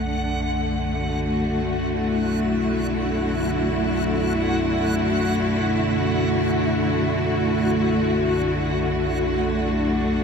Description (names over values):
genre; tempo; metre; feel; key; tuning
dark ambient drone; free time; none; none; unclear; A4 = 440 Hz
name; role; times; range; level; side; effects
dark symphonic cello section; sustained chords; 0.0-10.2 s; D3 to F#4; -21 LUFS; left 1 dB; none
analog drone; drone; 0.0-10.2 s; B1 to F#2; -28 LUFS; right 1 dB; wide subtle chorus
backwards swelling texture; texture; 0.0-10.2 s; F#5; -32 LUFS; right 1 dB; built-in reverb
room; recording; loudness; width
wet huge ambient reverb, RT60 7.3 s; none; -20 LUFS; side -6 dB against mid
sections
0.0-10.2 A section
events
fade-out on synth texture 0.0-10.2; filter sweep on synth drone 0.0-10.2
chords
0.0 Dadd9/B